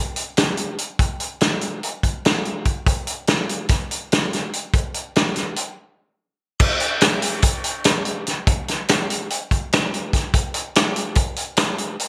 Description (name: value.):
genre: rock.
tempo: 289 BPM (eighths).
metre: 9/8.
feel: straight.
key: none.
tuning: none.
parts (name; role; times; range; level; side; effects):
loose indie drum kit; drums; 0.2-12.1 s; crash cymbal, hi-hat, kick drum, snare drum; -21 LUFS; equal; gated reverb.
room: light reverb.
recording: bright 1980s-style digital production.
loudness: -21 LUFS.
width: mono.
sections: 0.0-6.6 A section; 6.6-12.1 B section.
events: break 5.7-6.6.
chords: none.